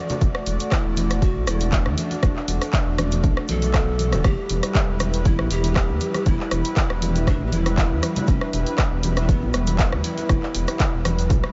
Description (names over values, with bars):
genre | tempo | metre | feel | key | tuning
afro house | 119 BPM | 4/4 | swing 53% on 16ths | E minor | A4 = 436 Hz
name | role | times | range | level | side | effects
warm analog pad | sustained chords | 0.0-11.5 s | G3 to D5 | -32 LUFS | equal | chorus, sidechain pumping
deep house drum kit | drums | 0.1-11.5 s | handclaps, hi-hat, rim click | -30 LUFS | equal | none
congas | percussion | 0.1-11.5 s | none | -33 LUFS | equal | none
egg shaker | percussion | 0.1-11.4 s | none | -42 LUFS | equal | none
dark detuned saw bass | bass | 0.2-11.4 s | D1 to E2 | -26 LUFS | equal | tube saturation, sidechain pumping
electronic kick drum | drums | 0.2-11.4 s | none | -23 LUFS | equal | none
breathy mellow large pan pipes | melody | 0.7-11.5 s | B3 to A4 | -32 LUFS | equal | tape echo
room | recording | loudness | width
light reverb | nothing above 7.7 kHz | -21 LUFS | mono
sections
0.0-11.5 A section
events
none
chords
0.0 D/E; 4.2 Em